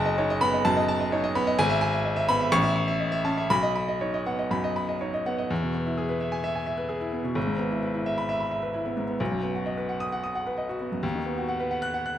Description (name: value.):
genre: classical, virtuoso piano study.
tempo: 129 BPM.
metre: 4/4.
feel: rubato.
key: E major.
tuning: A4 = 441 Hz.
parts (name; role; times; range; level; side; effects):
clear baby grand piano; solo; 0.0-12.2 s; F#1 to F#6; -24 LUFS; equal; none.
room: moderate recital hall reverb, RT60 1.7 s.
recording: none.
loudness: -24 LUFS.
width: side -11 dB against mid.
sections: 0.0-5.5 A section; 5.5-12.2 B section.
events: none.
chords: 0.0 B7/F#; 1.6 E/G#; 2.5 A; 3.5 B; 5.5 E; 7.4 E/G#; 9.2 B; 11.0 B/D#.